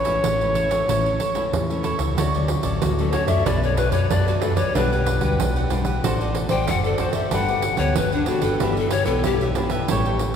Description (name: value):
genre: samba and choro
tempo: 93 BPM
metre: 4/4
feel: straight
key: D major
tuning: A4 = 441 Hz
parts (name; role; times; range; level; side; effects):
- breathy trumpet; melody; 0.0-1.8 s; C#5; -24 LUFS; equal; none
- cavaquinho; accompaniment; 0.0-10.3 s; D4 to G5; -29 LUFS; right 2 dB; none
- nylon-string guitar; accompaniment; 0.0-10.4 s; F#2 to C5; -28 LUFS; left 3 dB; none
- hollow-body short-scale fingered electric bass; bass; 0.0-10.3 s; F#1 to F#2; -24 LUFS; equal; none
- pandeiro; percussion; 0.0-10.4 s; none; -26 LUFS; right 4 dB; none
- breathy bright pan flute; second line; 2.8-9.4 s; D4 to G5; -24 LUFS; left 4 dB; none
room: wet church reverb, RT60 3.8 s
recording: recorded in a church or concert hall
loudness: -19 LUFS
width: side -8 dB against mid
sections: 0.0-2.2 A section; 2.2-10.4 B section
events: pan flute solo 2.2-10.4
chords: 0.0 A; 2.2 Dmaj7; 3.5 Bm7; 4.8 Gmaj7/B; 6.0 D7/A; 7.3 Gmaj9; 8.6 Em7/G